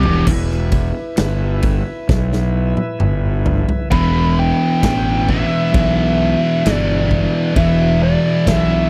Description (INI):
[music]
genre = stoner and doom metal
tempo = 66 BPM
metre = 4/4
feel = straight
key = E minor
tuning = A4 = 442 Hz
[part]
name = fuzz lead guitar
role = melody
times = 0.0-8.9 s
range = G4 to B5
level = -23 LUFS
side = equal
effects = wah, distortion, tape echo
[part]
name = bright tonewheel organ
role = sustained chords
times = 0.0-8.9 s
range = E4 to B5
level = -31 LUFS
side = equal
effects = slow rotary speaker
[part]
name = high-gain distorted guitar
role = riff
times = 0.0-8.9 s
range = E2 to E3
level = -26 LUFS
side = equal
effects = distortion
[part]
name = thick fuzz guitar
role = riff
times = 0.0-8.9 s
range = E2 to E3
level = -20 LUFS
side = equal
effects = distortion
[part]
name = fuzz fingered electric bass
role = bass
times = 0.0-8.9 s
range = E1 to B1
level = -21 LUFS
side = equal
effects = overdrive
[part]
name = big rock drum kit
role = drums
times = 0.0-8.7 s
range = crash cymbal, kick drum, ride cymbal, snare drum, toms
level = -22 LUFS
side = equal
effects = none
[sound]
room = small room ambience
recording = dry, close 1970s-style studio recording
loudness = -16 LUFS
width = mono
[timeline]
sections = 0.3-3.9 A section; 3.9-8.9 B section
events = drum fill 0.0, 2.1-3.9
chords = 0.3 Em; 3.9 E5